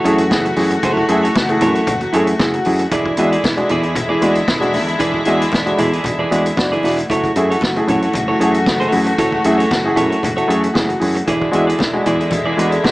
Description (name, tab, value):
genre	disco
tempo	115 BPM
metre	4/4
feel	straight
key	F# minor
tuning	A4 = 440 Hz
part	clean electric guitar	accompaniment	0.0-12.9 s	E4 to E5	-19 LUFS	right 2 dB	none
part	warm concert grand piano	accompaniment	0.0-12.9 s	E3 to G#4	-19 LUFS	equal	none
part	clear studio string section	sustained chords	0.0-12.9 s	D3 to F#4	-20 LUFS	left 1 dB	none
part	picked electric bass	bass	0.0-12.9 s	E1 to F#2	-22 LUFS	equal	none
part	vintage drum kit	drums	0.1-12.9 s	hi-hat, kick drum, snare drum	-22 LUFS	equal	none
part	congas	percussion	0.3-12.9 s	none	-29 LUFS	left 1 dB	none
room	moderate studio reverb, RT60 0.6 s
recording	small speaker sound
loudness	-13 LUFS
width	side -19 dB against mid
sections	0.0-12.9 A section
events	none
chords	0.0 F#m7; 2.9 E7; 7.1 F#m7; 11.3 E7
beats	0.31 | 0.83 1.35 1.87 2.40 | 2.92 3.44 3.96 4.48 | 5.00 5.53 6.05 6.57 | 7.09 7.61 8.14 8.66 | 9.18 9.71 10.23 10.75 | 11.27 11.80 12.32 12.84